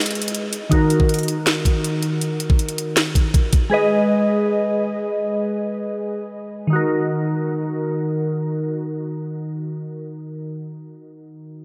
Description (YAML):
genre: hip hop, trap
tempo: 160 BPM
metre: 4/4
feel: half-time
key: Eb minor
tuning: A4 = 440 Hz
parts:
  - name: glassy digital keys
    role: accompaniment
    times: 0.0-11.6 s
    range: Eb3 to Eb5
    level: -23 LUFS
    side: equal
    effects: chorus, low-pass filter
  - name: trap drum kit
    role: drums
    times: 0.0-3.6 s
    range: hi-hat, kick drum, snare drum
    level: -21 LUFS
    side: equal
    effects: none
room: moderate huge ambient reverb, RT60 6.2 s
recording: dreamy mix soaked in reverb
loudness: -21 LUFS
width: mono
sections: 0.7-6.7 A section; 6.7-9.7 B section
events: break 0.0-0.7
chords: 0.0 Abm; 0.7 Ebm; 3.7 Abm; 6.7 Ebm